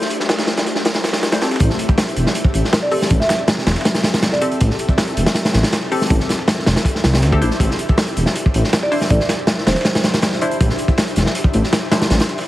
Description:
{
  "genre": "drum and bass, jungle",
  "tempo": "160 BPM",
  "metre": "4/4",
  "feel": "straight",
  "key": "A minor",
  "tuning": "A4 = 440 Hz",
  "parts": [
    { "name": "ethereal airy pad", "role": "sustained chords", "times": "0.0-12.5 s", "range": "A3 to E5", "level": "-26 LUFS", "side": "left 1 dB", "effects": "ensemble chorus, built-in reverb, vintage 12-bit sampler grit" },
    { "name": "filtered dub chord stab", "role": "stabs", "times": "0.0-12.5 s", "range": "A3 to C5", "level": "-25 LUFS", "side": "left 2 dB", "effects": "lush chorus, dub echo" },
    { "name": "crunchy breakbeat drum kit", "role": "drums", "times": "0.0-12.5 s", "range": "hi-hat, kick drum, snare drum", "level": "-17 LUFS", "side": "equal", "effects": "high-pass filter on kick, high-pass filter on hats, high-pass filter on snare, high-pass filter on room" },
    { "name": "dusty soul sampler-style drum kit", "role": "drums", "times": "0.1-12.5 s", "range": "hi-hat, snare drum", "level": "-28 LUFS", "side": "right 1 dB", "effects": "high-pass filter on hats, high-pass filter on snare" },
    { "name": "dark detuned saw bass", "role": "bass", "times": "1.6-12.2 s", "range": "E1 to D2", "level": "-16 LUFS", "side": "equal", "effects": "none" },
    { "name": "marimba with medium mallets", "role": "melody", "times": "2.8-4.6, 8.8-10.2 s", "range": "C5 to E5", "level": "-24 LUFS", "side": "right 2 dB", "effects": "vintage 12-bit sampler grit, dub echo" }
  ],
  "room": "light reverb, small room ambience",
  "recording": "heavily compressed radio sound, multiband compression, vinyl crackle",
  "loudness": "-14 LUFS",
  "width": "side -15 dB against mid",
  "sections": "0.0-1.6 A section; 1.6-12.5 B section",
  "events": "drop 1.6-12.5",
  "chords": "0.0 Cadd9/A; 1.6 Am7"
}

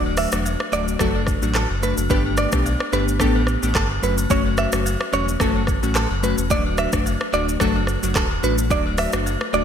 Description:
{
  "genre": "afrobeats",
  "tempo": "109 BPM",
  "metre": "4/4",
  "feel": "swing 55% on 16ths",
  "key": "D major",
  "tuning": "A4 = 442 Hz",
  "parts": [
    { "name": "glassy digital keys", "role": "accompaniment", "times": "0.0-9.6 s", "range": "F#3 to G4", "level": "-24 LUFS", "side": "left 2 dB", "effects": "chorus" },
    { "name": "sub bass with octave", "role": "bass", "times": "0.0-9.6 s", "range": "D1 to B1", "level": "-24 LUFS", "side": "equal", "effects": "none" },
    { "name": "agogo bells and woodblock", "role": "percussion", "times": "0.1-9.6 s", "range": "none", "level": "-33 LUFS", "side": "left 2 dB", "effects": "none" },
    { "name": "direct-recorded clean electric guitar", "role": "riff", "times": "0.2-9.6 s", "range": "A4 to E5", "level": "-25 LUFS", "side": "right 4 dB", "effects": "wide subtle chorus, ping-pong delay" },
    { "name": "afro-pop drum kit", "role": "drums", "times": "0.2-9.6 s", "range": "handclaps, hi-hat, kick drum, rim click, shaker", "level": "-24 LUFS", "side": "equal", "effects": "gated reverb" }
  ],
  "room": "moderate lush hall reverb, RT60 2.1 s",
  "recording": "bright 1980s-style digital production",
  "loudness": "-18 LUFS",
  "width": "side -8 dB against mid",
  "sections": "0.0-9.6 A section",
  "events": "none",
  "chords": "0.0 D; 2.1 Gadd9; 4.0 F#m; 6.5 D"
}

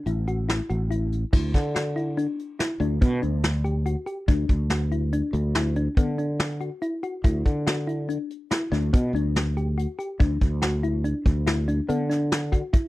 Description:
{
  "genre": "progressive instrumental, band music in an uneven meter",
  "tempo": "142 BPM",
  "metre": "7/4",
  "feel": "straight",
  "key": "D major",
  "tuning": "A4 = 440 Hz",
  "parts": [
    { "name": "thumb-piano-like synth pluck", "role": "arpeggios", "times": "0.1-12.8 s", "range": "B3 to G4", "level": "-29 LUFS", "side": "left 2 dB", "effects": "chorus" },
    { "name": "sustaining fretless electric bass", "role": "bass", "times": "0.1-12.6 s", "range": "A1 to D3", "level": "-25 LUFS", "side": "equal", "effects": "analog chorus" },
    { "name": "vintage brush drum kit", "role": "drums", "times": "0.1-12.8 s", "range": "crash cymbal, hi-hat, kick drum, snare drum", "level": "-22 LUFS", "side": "equal", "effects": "none" }
  ],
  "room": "little or no reverb",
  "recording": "dry, close 1970s-style studio recording, lossy compression artefacts",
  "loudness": "-22 LUFS",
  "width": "side -18 dB against mid",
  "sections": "0.0-1.3 A section; 1.3-12.9 B section",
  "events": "none",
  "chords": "0.0 Dsus2 (rootless); 1.3 N.C."
}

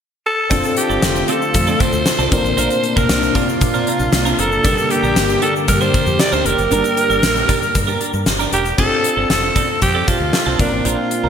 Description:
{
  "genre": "1980s-style pop",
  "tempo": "116 BPM",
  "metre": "4/4",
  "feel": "straight",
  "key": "unclear",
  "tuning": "A4 = 440 Hz",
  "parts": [
    { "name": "breathy alto saxophone", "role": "melody", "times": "0.3-11.3 s", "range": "D4 to D5", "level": "-18 LUFS", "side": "right 1 dB", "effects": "ping-pong delay" },
    { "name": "dark baby grand piano", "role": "accompaniment", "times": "0.5-11.3 s", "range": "G2 to Bb4", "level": "-23 LUFS", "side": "left 2 dB", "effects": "none" },
    { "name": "phased analog pad", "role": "sustained chords", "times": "0.5-8.7 s", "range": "C3 to G4", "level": "-23 LUFS", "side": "equal", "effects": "phaser, chorus" },
    { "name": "twelve-string electric guitar", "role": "riff", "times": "0.5-11.3 s", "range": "C4 to Bb4", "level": "-24 LUFS", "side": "right 6 dB", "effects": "analog chorus" },
    { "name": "woody fretless electric bass", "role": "bass", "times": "0.5-11.3 s", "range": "E1 to Bb2", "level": "-22 LUFS", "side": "equal", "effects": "none" },
    { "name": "gated 80s drum kit", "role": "drums", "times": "0.5-11.2 s", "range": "crash cymbal, hi-hat, kick drum, snare drum", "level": "-18 LUFS", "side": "left 1 dB", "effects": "gated reverb" },
    { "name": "tube shaker", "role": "percussion", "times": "0.5-8.8 s", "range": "none", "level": "-33 LUFS", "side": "left 8 dB", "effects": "none" }
  ],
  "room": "wet lush hall reverb, RT60 2.1 s",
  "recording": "bright 1980s-style digital production",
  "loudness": "-14 LUFS",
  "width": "side -8 dB against mid",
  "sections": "0.5-8.8 A section; 8.8-11.3 B section",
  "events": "none",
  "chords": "0.0 N.C.; 0.5 F6; 2.3 Bbadd9; 4.6 Gm; 8.8 F6; 10.6 Bbadd9"
}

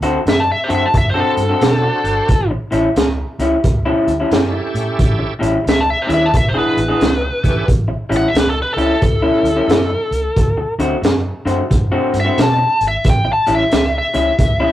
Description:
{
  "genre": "electric blues shuffle",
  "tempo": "89 BPM",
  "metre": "4/4",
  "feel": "swing 64% on 8ths",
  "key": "A mixolydian",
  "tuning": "A4 = 441 Hz",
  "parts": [
    { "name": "electric guitar through a small old amp", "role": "riff", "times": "0.0-14.7 s", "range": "A2 to A4", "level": "-18 LUFS", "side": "left 1 dB", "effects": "spring reverb" },
    { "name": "vintage muted fingered electric bass", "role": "bass", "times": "0.0-14.7 s", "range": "E1 to B2", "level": "-22 LUFS", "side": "right 1 dB", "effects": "none" },
    { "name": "crunchy breakbeat drum kit", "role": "drums", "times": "0.0-14.6 s", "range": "hi-hat, kick drum, snare drum", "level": "-17 LUFS", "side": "equal", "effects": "none" },
    { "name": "biting lead guitar", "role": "melody", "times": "0.3-14.7 s", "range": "A4 to A5", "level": "-18 LUFS", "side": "left 1 dB", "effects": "overdrive" },
    { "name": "bright tonewheel organ", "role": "accompaniment", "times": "1.6-7.7 s", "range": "C#4 to C5", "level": "-23 LUFS", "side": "right 3 dB", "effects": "overdrive, chorus vibrato, slow rotary speaker" }
  ],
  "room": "wet booth ambience, RT60 0.3 s",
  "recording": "rough rehearsal-room recording",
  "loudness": "-13 LUFS",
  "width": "side -13 dB against mid",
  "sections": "0.0-7.7 A section; 7.7-14.7 B section",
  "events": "lead electric guitar solo 7.7-14.7",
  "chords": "0.0 D7; 2.3 A7; 6.3 E7; 7.7 A7; 10.4 D7; 13.0 A7"
}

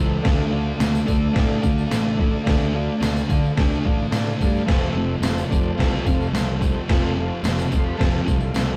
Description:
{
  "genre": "garage rock duo or trio",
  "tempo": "108 BPM",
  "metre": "4/4",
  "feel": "straight",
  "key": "unclear",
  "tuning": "A4 = 438 Hz",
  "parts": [
    { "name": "combo organ", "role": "sustained chords", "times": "0.0-8.8 s", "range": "A4 to C6", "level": "-33 LUFS", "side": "equal", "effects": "none" },
    { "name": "thick fuzz guitar", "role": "riff", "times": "0.0-8.8 s", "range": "F2 to D4", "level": "-26 LUFS", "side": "equal", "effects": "distortion" },
    { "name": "fuzz fingered electric bass", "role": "bass", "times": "0.0-8.8 s", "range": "F1 to D3", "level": "-27 LUFS", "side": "equal", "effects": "overdrive" },
    { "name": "trip hop sampler-style drum kit", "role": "drums", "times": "0.2-8.7 s", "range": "crash cymbal, kick drum, snare drum", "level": "-24 LUFS", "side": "equal", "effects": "none" },
    { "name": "tambourine", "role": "percussion", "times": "0.8-8.7 s", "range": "none", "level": "-43 LUFS", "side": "equal", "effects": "none" }
  ],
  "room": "light reverb",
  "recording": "rough rehearsal-room recording, warm saturation",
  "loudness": "-21 LUFS",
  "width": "mono",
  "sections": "0.0-8.8 A section",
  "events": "transistor combo organ fill 7.5-8.8",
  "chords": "0.2 Dm; 4.7 F"
}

